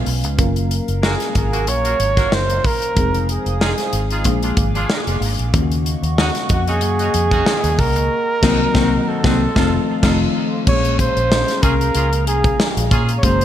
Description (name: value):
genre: polished 1980s jazz-funk pop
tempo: 93 BPM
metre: 4/4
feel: swing 54% on 16ths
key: Bb minor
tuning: A4 = 439 Hz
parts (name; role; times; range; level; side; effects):
- bell-like FM electric piano; accompaniment; 0.0-13.4 s; Db3 to Cb5; -23 LUFS; left 4 dB; analog chorus
- hollow soft pad; sustained chords; 0.0-13.4 s; Bb3 to Eb6; -28 LUFS; left 1 dB; chorus
- vintage muted fingered electric bass; bass; 0.0-13.4 s; F1 to Bb2; -20 LUFS; equal; none
- modern studio drum kit; drums; 0.1-13.4 s; crash cymbal, hi-hat, kick drum, snare drum; -19 LUFS; equal; gated reverb
- breathy flugelhorn; melody; 1.0-13.4 s; Gb4 to Db5; -21 LUFS; right 2 dB; none
- warm horn section; second line; 1.0-13.1 s; Bb3 to Bb4; -27 LUFS; right 1 dB; digital delay
room: light reverb, studio reverb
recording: bright 1980s-style digital production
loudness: -15 LUFS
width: side -11 dB against mid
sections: 0.0-10.7 A section; 10.7-13.4 B section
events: band accent 8.1-10.7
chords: 0.4 Gbmaj7; 3.0 Fm7; 4.3 Bb7; 5.5 Ebm7; 8.1 Cm7b5; 9.4 F7; 10.7 Bbm7